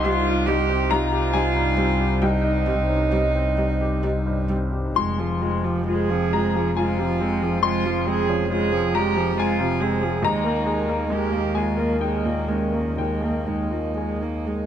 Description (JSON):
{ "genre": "neoclassical piano and strings", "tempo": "67 BPM", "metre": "3/4", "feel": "uneven beats, rubato", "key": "F minor", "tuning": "A4 = 438 Hz", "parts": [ { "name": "rich cello", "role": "second line", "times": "0.0-14.7 s", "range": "Db4 to Ab4", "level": "-26 LUFS", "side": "right 6 dB", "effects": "none" }, { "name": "clear upright piano", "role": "accompaniment", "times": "0.0-14.7 s", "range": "C2 to C6", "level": "-26 LUFS", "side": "left 4 dB", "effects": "none" }, { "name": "hollow soft pad", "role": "sustained chords", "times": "0.0-14.7 s", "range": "G3 to Eb5", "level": "-30 LUFS", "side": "left 1 dB", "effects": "chorus" }, { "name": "warm double bass", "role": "bass", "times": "0.0-14.7 s", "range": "F1 to Eb2", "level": "-26 LUFS", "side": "left 1 dB", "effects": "none" }, { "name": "warm viola", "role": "accompaniment", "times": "0.1-14.7 s", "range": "F3 to Bb3", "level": "-27 LUFS", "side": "right 3 dB", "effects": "none" } ], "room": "little or no reverb", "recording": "close, detailed microphones", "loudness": "-20 LUFS", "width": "side -9 dB against mid", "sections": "0.0-14.7 A section", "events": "none", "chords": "0.0 Cm; 5.0 Fm; 10.2 Ebsus4" }